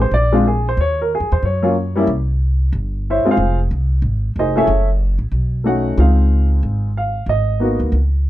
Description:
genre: jazz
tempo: 184 BPM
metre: 4/4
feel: swing 63% on 8ths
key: Db major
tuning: A4 = 440 Hz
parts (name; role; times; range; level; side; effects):
- warm baby grand piano; melody; 0.0-7.9 s; Gb3 to Gb5; -17 LUFS; equal; none
- upright bass; bass; 0.0-8.3 s; F1 to Gb2; -17 LUFS; equal; none
room: light reverb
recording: dark, warm production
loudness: -15 LUFS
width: side -14 dB against mid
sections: 0.0-8.3 A section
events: none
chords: 0.1 Bb7; 0.8 Ebm7; 2.1 C; 3.4 Fm7; 4.7 Gbm7; 5.3 Cb9; 6.0 Dbmaj9; 7.3 Abm7

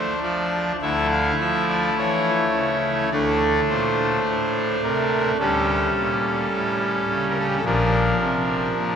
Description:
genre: classical, chorale-style piece for pipe organ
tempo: 53 BPM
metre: 4/4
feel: rubato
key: D minor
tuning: A4 = 439 Hz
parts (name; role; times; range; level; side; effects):
- pipe organ, trumpet; solo; 0.0-9.0 s; Bb1 to F5; -19 LUFS; equal; none
room: wet cathedral reverb, RT60 6.8 s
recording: none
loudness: -19 LUFS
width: side -7 dB against mid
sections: 0.0-9.0 A section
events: none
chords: 0.0 Dm; 0.8 A/D; 3.1 D5; 5.4 A7/D; 7.7 Bb

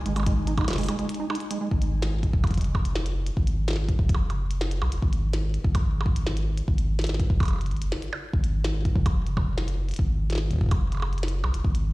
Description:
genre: IDM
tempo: 145 BPM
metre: 4/4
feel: straight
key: unclear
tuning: A4 = 437 Hz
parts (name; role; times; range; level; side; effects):
- flickering grainy texture; texture; 0.0-1.7 s; G#5; -48 LUFS; right 1 dB; none
- deep acid bass; arpeggios; 0.1-1.7 s; G#3 to D#4; -31 LUFS; right 2 dB; cassette tape, ping-pong delay
- warm sub bass; bass; 0.1-11.9 s; F#1 to B1; -26 LUFS; equal; none
- glitchy drum kit; drums; 0.1-11.8 s; cabasa, hi-hat, percussion blips, snare drum, toms; -33 LUFS; right 1 dB; studio ambience, ping-pong delay
- electronic kick drum; drums; 0.3-11.7 s; none; -24 LUFS; equal; studio ambience
room: digital ambience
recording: played on a big sound system in a bare room, large studio reverb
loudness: -23 LUFS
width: side -20 dB against mid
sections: 0.0-1.7 A section; 1.7-11.9 B section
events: break 0.9-1.7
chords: 0.1 D#sus4; 1.7 N.C.; 6.7 F#sus2; 8.3 N.C.

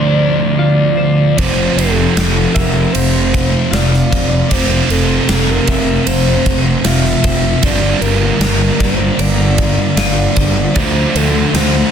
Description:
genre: rock, shoegaze and dream pop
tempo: 77 BPM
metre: 4/4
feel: straight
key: F major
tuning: A4 = 441 Hz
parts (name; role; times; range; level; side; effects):
- pure breathy sine lead; melody; 0.0-11.9 s; A4 to E5; -20 LUFS; equal; chorus, digital delay
- twelve-string electric guitar; arpeggios; 0.0-11.9 s; F4 to E5; -26 LUFS; left 5 dB; lush chorus, digital delay
- crunchy overdriven guitar; riff; 0.0-11.9 s; F2 to D4; -17 LUFS; right 10 dB; reverse reverb
- thick fuzz guitar; riff; 0.0-11.9 s; F2 to D4; -17 LUFS; left 8 dB; distortion, lush chorus
- fuzz fingered electric bass; bass; 1.4-11.8 s; F1 to D2; -17 LUFS; equal; overdrive
- gated 80s drum kit; drums; 1.4-11.7 s; kick drum, ride cymbal, snare drum; -17 LUFS; right 1 dB; none
room: studio reverb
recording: dense, heavily limited modern master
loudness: -11 LUFS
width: side -8 dB against mid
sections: 0.0-11.9 A section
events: none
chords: 0.0 Dm7; 1.4 Fmaj7; 7.6 Gm7; 10.8 Dm7

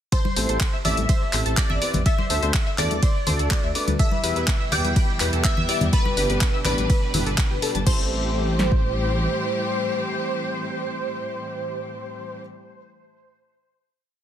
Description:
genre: progressive house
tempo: 124 BPM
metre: 4/4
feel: straight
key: A minor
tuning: A4 = 437 Hz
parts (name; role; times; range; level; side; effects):
- plucky unison lead; melody; 0.1-12.4 s; B4 to G5; -28 LUFS; right 1 dB; analog chorus, ping-pong delay
- soft synth bell; second line; 0.1-12.4 s; B5 to G6; -36 LUFS; left 2 dB; chorus, vintage 12-bit sampler grit, sidechain pumping, tape echo
- tight sequenced synth; arpeggios; 0.1-8.1 s; E4 to A6; -31 LUFS; left 1 dB; chorus, phaser, sidechain pumping, tape echo
- deep house drum kit; drums; 0.1-8.8 s; kick drum, snare drum; -21 LUFS; equal; overdrive
- deep house drum kit; drums; 0.1-8.0 s; crash cymbal, handclaps, hi-hat, ride cymbal; -27 LUFS; left 1 dB; overdrive
- congas; percussion; 0.2-7.8 s; none; -29 LUFS; left 3 dB; sidechain pumping on perc
- dark baby grand piano; stabs; 0.4-12.4 s; A3 to D5; -32 LUFS; left 1 dB; sidechain pumping, tape echo
- dark detuned saw bass; bass; 0.4-9.3 s; G1 to E2; -26 LUFS; equal; sidechain pumping
- rich studio string section; sustained chords; 4.0-12.4 s; A2 to G4; -30 LUFS; left 1 dB; sidechain pumping
room: little or no reverb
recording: none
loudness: -20 LUFS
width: side -10 dB against mid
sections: 0.1-7.9 drop; 7.9-11.7 final chord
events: drop 0.1-7.9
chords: 0.1 Am7; 2.1 D; 4.0 Em; 5.9 G; 7.9 Am7

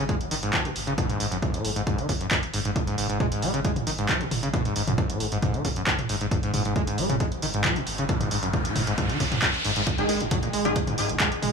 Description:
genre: driving peak-time techno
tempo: 135 BPM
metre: 4/4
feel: straight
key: unclear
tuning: A4 = 438 Hz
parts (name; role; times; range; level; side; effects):
- overdriven acid bass; riff; 0.0-11.5 s; G#1 to G#3; -27 LUFS; equal; distortion, wide subtle chorus, sidechain pumping, digital delay
- saturated sub bass; bass; 0.0-11.5 s; G#1; -37 LUFS; equal; overdrive, sidechain pumping, low-pass filter
- electronic kick drum; drums; 0.1-11.3 s; none; -28 LUFS; equal; none
- punchy analog drum machine; drums; 0.1-11.5 s; handclaps, hi-hat, toms; -28 LUFS; equal; none
- riser and sub drop; sound effects; 7.3-11.5 s; none; -31 LUFS; equal; none
- rave stab; stabs; 10.0-10.8 s; D#3 to G#4; -27 LUFS; left 1 dB; chorus, built-in reverb, sidechain pumping, digital delay
room: light reverb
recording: studio ambience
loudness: -23 LUFS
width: side -5 dB against mid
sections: 0.0-9.9 A section; 9.9-11.5 B section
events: riser 7.3-9.9; drop 9.9-11.5; impact 9.9-11.5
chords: 0.0 G#5

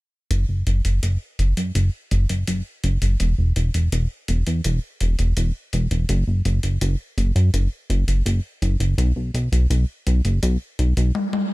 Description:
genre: synthwave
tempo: 83 BPM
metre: 4/4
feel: straight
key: unclear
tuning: A4 = 443 Hz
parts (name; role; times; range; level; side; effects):
- chorused synth bass; bass; 0.3-11.1 s; E1 to F#2; -18 LUFS; equal; none
- gated 80s digital drum machine; drums; 0.3-11.5 s; hi-hat, toms; -30 LUFS; left 2 dB; gated reverb, overdrive
room: little or no reverb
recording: bright 1980s-style digital production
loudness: -19 LUFS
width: side -20 dB against mid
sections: 0.3-11.5 A section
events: filter sweep on analog synth bass 0.3-11.5; drum fill 11.2-11.5; stop 11.2-11.5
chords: none

